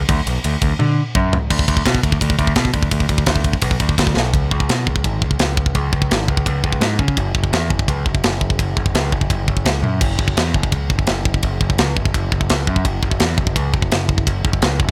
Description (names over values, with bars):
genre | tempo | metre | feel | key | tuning
heavy metal | 169 BPM | 4/4 | straight | unclear | A4 = 443 Hz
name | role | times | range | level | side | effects
growling picked electric bass | bass | 0.1-14.9 s | F#1 to D3 | -22 LUFS | equal | overdrive
tight metal drum kit | drums | 0.1-14.9 s | crash cymbal, kick drum, ride cymbal, snare drum, toms | -20 LUFS | equal | none
room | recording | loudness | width
little or no reverb | none | -18 LUFS | mono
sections
0.0-1.5 A section; 1.5-4.3 B section; 4.3-14.9 C section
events
half time 0.0-1.5; drum fill 0.8-1.5, 4.2, 9.8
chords
none